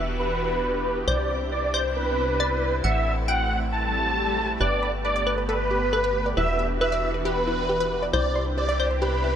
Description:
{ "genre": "trance", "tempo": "136 BPM", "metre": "4/4", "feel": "straight", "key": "unclear", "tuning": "A4 = 440 Hz", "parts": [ { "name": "dense compressed supersaw", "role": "melody", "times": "0.0-9.4 s", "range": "B4 to A5", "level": "-25 LUFS", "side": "right 1 dB", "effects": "low-pass filter, dub echo" }, { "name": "glassy wavetable pluck", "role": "second line", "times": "0.0-9.4 s", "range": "B4 to G5", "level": "-30 LUFS", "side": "left 1 dB", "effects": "chorus, dub echo" }, { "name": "filtered supersaw swell", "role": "sustained chords", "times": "0.0-9.4 s", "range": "C3 to G4", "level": "-31 LUFS", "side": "right 1 dB", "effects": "phaser" }, { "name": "tight sequencer bass", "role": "bass", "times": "0.0-9.4 s", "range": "E1 to C2", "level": "-28 LUFS", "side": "equal", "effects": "tube saturation" }, { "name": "swell", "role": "sound effects", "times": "3.8-4.6 s", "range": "none", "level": "-35 LUFS", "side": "left 5 dB", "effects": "none" }, { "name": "wide unison pluck", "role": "arpeggios", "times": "4.6-9.3 s", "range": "E4 to C6", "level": "-31 LUFS", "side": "left 1 dB", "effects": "dub echo" } ], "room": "moderate huge ambient reverb, RT60 6.7 s", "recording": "none", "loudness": "-22 LUFS", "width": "side -9 dB against mid", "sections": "0.0-9.4 A section", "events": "filter sweep on supersaw synth 0.0-9.4; swell 3.8-4.6", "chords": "0.0 Em7; 1.1 Cadd9; 2.8 Am; 4.6 Gadd9; 6.4 Em7; 8.1 Cadd9" }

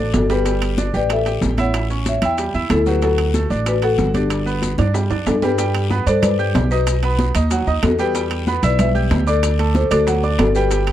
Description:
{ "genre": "latin, salsa", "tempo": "187 BPM", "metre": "4/4", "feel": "straight", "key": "G major", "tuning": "A4 = 443 Hz", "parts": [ { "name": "marimba with medium mallets", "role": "melody", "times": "0.0-10.9 s", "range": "D4 to G5", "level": "-21 LUFS", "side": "left 4 dB", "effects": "none" }, { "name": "bright grand piano", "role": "accompaniment", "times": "0.0-10.9 s", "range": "F#3 to G6", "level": "-24 LUFS", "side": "right 5 dB", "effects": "none" }, { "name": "upright bass", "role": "bass", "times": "0.0-10.9 s", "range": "G1 to G2", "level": "-19 LUFS", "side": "right 1 dB", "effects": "none" }, { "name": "bongos", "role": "percussion", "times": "0.1-10.9 s", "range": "none", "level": "-30 LUFS", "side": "left 5 dB", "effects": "none" }, { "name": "claves", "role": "percussion", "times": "0.1-10.9 s", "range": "none", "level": "-33 LUFS", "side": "right 15 dB", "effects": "none" }, { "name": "congas", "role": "percussion", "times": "0.1-10.9 s", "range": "none", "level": "-24 LUFS", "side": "equal", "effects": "none" }, { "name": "guiro", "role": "percussion", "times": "0.1-10.9 s", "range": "none", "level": "-36 LUFS", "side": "left 13 dB", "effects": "none" }, { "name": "maracas", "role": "percussion", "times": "0.1-10.9 s", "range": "none", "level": "-35 LUFS", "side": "left 14 dB", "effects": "none" }, { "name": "timbales", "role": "percussion", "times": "0.1-10.9 s", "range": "none", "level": "-28 LUFS", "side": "right 8 dB", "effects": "none" } ], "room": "small room ambience", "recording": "dry, close 1970s-style studio recording", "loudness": "-15 LUFS", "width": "side -12 dB against mid", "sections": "0.0-5.6 A section; 5.6-10.9 A section", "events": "drum fill 0.0-0.5, 4.8-5.6", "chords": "0.5 Gsus2; 1.7 A7; 3.0 D; 4.3 G; 6.9 B; 8.2 Em; 9.4 D" }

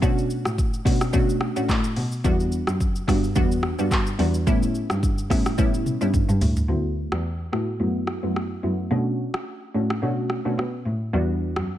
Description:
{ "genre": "afrobeats", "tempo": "108 BPM", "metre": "4/4", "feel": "swing 55% on 16ths", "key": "D major", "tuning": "A4 = 439 Hz", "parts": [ { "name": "glassy wavetable pluck", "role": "accompaniment", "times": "0.0-11.7 s", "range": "G3 to F#4", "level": "-26 LUFS", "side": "equal", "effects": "chorus, low-pass filter" }, { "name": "dark cello", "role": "bass", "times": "0.0-11.8 s", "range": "D2 to B2", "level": "-25 LUFS", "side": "equal", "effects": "none" }, { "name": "afro-pop drum kit", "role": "drums", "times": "0.0-11.7 s", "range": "handclaps, hi-hat, kick drum, rim click, shaker, toms", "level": "-24 LUFS", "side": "equal", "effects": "none" } ], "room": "digital ambience", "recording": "none", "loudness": "-21 LUFS", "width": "side -12 dB against mid", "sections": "0.0-6.7 A section; 6.7-11.8 B section", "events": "drum fill 5.6-6.7; filter sweep on synth pluck 6.7-11.8", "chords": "0.0 Bm9; 2.2 Em7; 4.5 A7; 6.7 D69; 8.9 Bm9; 11.1 Em7" }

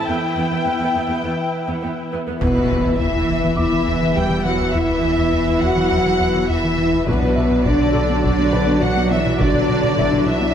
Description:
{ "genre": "cinematic, hybrid orchestral and electronic film score", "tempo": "103 BPM", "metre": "4/4", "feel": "straight", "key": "E minor", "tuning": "A4 = 440 Hz", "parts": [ { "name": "dark symphonic violin section", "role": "melody", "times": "0.0-10.5 s", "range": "B4 to G5", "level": "-26 LUFS", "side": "left 2 dB", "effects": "none" }, { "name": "rich symphonic viola section", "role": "accompaniment", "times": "0.0-10.5 s", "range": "E3 to E4", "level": "-27 LUFS", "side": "right 2 dB", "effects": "none" }, { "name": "warm analog pad", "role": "sustained chords", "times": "0.0-10.5 s", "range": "E3 to E5", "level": "-24 LUFS", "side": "equal", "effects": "chorus" }, { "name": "clear concert grand piano", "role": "texture", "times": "0.0-10.5 s", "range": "E4 to D6", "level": "-31 LUFS", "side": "left 1 dB", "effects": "digital delay" }, { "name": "rich studio cello section", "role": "bass", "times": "0.1-10.5 s", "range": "E2 to G3", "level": "-25 LUFS", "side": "right 4 dB", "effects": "none" }, { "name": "warm symphonic violin section", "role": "second line", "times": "2.4-10.5 s", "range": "B4 to G5", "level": "-25 LUFS", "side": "left 2 dB", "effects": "none" }, { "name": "dark French horn section", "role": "sustained chords", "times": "2.4-10.5 s", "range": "B3 to G4", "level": "-21 LUFS", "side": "left 3 dB", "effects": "none" }, { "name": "rubbery square bass", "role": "riff", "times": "2.4-10.5 s", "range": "E2 to B3", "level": "-25 LUFS", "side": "left 1 dB", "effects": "none" }, { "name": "rich symphonic double bass section", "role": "bass", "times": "2.4-10.5 s", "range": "B1 to E2", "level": "-27 LUFS", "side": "right 2 dB", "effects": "none" }, { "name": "sub bass with octave", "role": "bass", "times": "2.4-10.5 s", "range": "E1 to B1", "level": "-28 LUFS", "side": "equal", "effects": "none" }, { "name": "taiko ensemble", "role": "drums", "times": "2.4-3.5, 7.1-10.5 s", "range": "none", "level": "-27 LUFS", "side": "equal", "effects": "none" }, { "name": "impact", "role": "sound effects", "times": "2.4-4.7 s", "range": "none", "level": "-28 LUFS", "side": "equal", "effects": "none" } ], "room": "wet recital hall reverb, RT60 1.5 s", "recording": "none", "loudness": "-16 LUFS", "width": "side -9 dB against mid", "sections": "0.0-2.4 A section; 2.4-10.5 A section", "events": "impact 2.4-4.7", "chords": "0.1 Em; 7.1 Bm" }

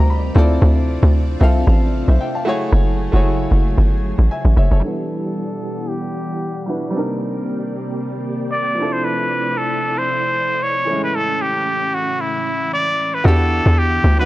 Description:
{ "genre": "amapiano", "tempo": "114 BPM", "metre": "4/4", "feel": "swing 55% on 16ths", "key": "unclear", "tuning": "A4 = 437 Hz", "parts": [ { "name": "clear concert grand piano", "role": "accompaniment", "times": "0.0-14.3 s", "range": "E3 to B5", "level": "-24 LUFS", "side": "equal", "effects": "low-pass filter" }, { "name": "ensemble organ-string", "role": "sustained chords", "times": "0.0-14.3 s", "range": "A2 to F#5", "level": "-26 LUFS", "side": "equal", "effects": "ensemble chorus, low-pass filter" }, { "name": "tight log drum bass", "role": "bass", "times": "0.0-4.8, 13.2-14.3 s", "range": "F#1 to E2", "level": "-13 LUFS", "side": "equal", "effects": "none" }, { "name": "trumpet with straight mute", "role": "melody", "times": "4.8-14.3 s", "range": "E4 to D5", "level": "-20 LUFS", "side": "equal", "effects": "low-pass filter" } ], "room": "small room reverb", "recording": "dry, gritty hardware recording", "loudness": "-16 LUFS", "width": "side -17 dB against mid", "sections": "0.0-4.8 A section; 4.8-13.3 B section; 13.3-14.3 C section", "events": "drop 0.0-4.8; grand piano fill 0.0-0.6; filter sweep 4.8-13.3", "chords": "0.4 Dm9; 2.5 F#m9; 4.8 Em9; 6.9 Cm9; 8.8 Dm9; 10.9 Amaj7; 13.3 Em9" }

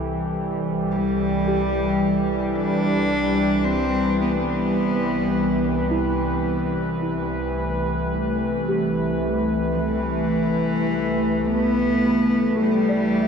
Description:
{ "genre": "ambient", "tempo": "54 BPM", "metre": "4/4", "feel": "straight", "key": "C major", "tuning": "A4 = 438 Hz", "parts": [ { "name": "warbly tape-like pad", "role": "sustained chords", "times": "0.0-13.3 s", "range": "C2 to B4", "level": "-21 LUFS", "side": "equal", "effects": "chorus, built-in reverb" }, { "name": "rich cello", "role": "melody", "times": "0.9-13.3 s", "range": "E3 to D4", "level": "-25 LUFS", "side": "equal", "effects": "tape echo" }, { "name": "small celesta", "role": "arpeggios", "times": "1.5-13.3 s", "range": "E4 to E5", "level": "-32 LUFS", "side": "right 1 dB", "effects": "tape echo" } ], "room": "wet huge ambient reverb, RT60 7.3 s", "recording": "dark, warm production", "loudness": "-20 LUFS", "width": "side -6 dB against mid", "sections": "0.0-13.3 A section", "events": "none", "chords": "0.0 C6" }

